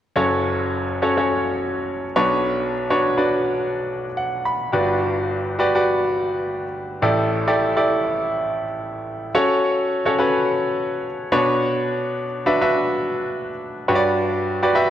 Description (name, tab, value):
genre	pop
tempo	105 BPM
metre	4/4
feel	swing 56% on 16ths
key	unclear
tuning	A4 = 440 Hz
part	bright grand piano	accompaniment	0.2-14.9 s	F#1 to B5	-18 LUFS	equal	none
room	wet concert hall reverb, RT60 2.2 s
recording	worn, warbling old tape, cassette tape, warbly pitch drift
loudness	-18 LUFS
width	side -11 dB against mid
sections	0.2-9.3 A section; 9.3-14.9 B section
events	grand piano fill 3.9-4.7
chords	0.2 F#m; 2.2 Bmadd9; 4.7 Gmaj7; 7.0 A7sus4; 9.3 F#m; 11.3 Bmadd9; 13.9 Gmaj7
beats	| 0.16 0.73 1.30 1.88 | 2.45 3.02 3.59 4.17 | 4.74 5.31 5.88 6.46 | 7.03 7.60 8.17 8.74 | 9.31 9.89 10.46 11.03 | 11.60 12.17 12.74 13.31 | 13.88 14.46